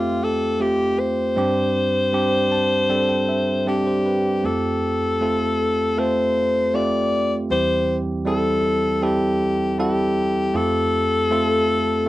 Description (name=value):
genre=pop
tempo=79 BPM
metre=4/4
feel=straight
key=unclear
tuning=A4 = 437 Hz
part: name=bright alto saxophone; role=melody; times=0.0-12.1 s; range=F4 to D5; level=-20 LUFS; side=left 2 dB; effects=none
part: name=bell-like tine electric piano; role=accompaniment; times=0.0-12.1 s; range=E2 to A5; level=-22 LUFS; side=right 2 dB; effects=none
room=little or no reverb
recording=dry, close 1970s-style studio recording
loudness=-18 LUFS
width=side -16 dB against mid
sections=0.0-4.5 A section; 4.5-12.1 B section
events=tine electric piano fill 2.1-4.5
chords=0.0 Fadd9; 1.4 Gsus4; 4.5 Fadd9; 7.5 C/E; 10.6 Fadd9